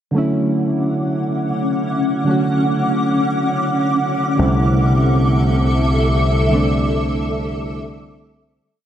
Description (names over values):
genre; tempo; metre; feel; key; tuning
amapiano; free time; none; none; D major; A4 = 439 Hz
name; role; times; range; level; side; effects
soft electric-piano-like synth keys; accompaniment; 0.1-8.7 s; D3 to F#4; -19 LUFS; right 1 dB; chorus
granular cloud pad; sustained chords; 0.6-8.6 s; C#4 to D6; -20 LUFS; left 1 dB; built-in reverb, ensemble chorus
fat analog bass; bass; 4.4-8.6 s; C2; -17 LUFS; equal; none
room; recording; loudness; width
wet huge ambient reverb, RT60 6.5 s; dreamy mix soaked in reverb; -15 LUFS; side -10 dB against mid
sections
0.1-8.6 breakdown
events
fade-out 6.5-8.6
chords
0.1 Dmaj7; 4.4 C69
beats
free time